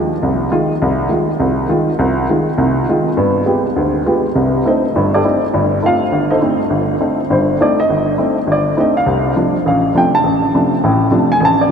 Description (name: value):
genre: jazz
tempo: 204 BPM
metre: 4/4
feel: swing 62% on 8ths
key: C dorian from 4.3 s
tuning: A4 = 442 Hz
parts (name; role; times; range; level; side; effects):
- warm baby grand piano; solo; 0.0-11.7 s; G1 to A5; -12 LUFS; equal; none
room: wet huge ambient reverb, RT60 8.1 s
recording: in a vast, echoing space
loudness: -12 LUFS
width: side -6 dB against mid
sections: 0.0-4.3 A section; 4.3-11.7 B section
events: none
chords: 0.0 Fm7; 3.2 G7b9; 4.3 Cm69; 9.1 Dm